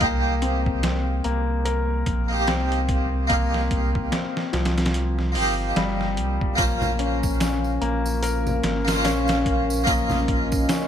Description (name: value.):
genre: trip hop.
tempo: 73 BPM.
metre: 4/4.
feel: swing 59% on 16ths.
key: unclear.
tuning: A4 = 440 Hz.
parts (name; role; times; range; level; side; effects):
harpsichord; accompaniment; 0.0-10.9 s; Bb3 to F5; -26 LUFS; right 1 dB; tremolo, low-pass filter, tape echo.
felt-muted upright piano; arpeggios; 0.0-10.9 s; F3 to Bb4; -27 LUFS; left 5 dB; tape echo.
warm sub bass; bass; 0.0-10.7 s; G1 to C2; -25 LUFS; right 1 dB; none.
trip hop sampler-style drum kit; drums; 0.0-10.9 s; hi-hat, kick drum, snare drum; -26 LUFS; right 1 dB; overdrive.
dark analog pad; sustained chords; 6.6-10.9 s; Db4 to C6; -29 LUFS; right 3 dB; chorus.
tambourine and congas; percussion; 6.6-10.9 s; none; -34 LUFS; right 2 dB; none.
room: light reverb, small room ambience.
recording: none.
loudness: -20 LUFS.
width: side -9 dB against mid.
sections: 0.0-10.9 A section.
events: none.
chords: 0.0 Cm7; 6.6 Bbmadd9.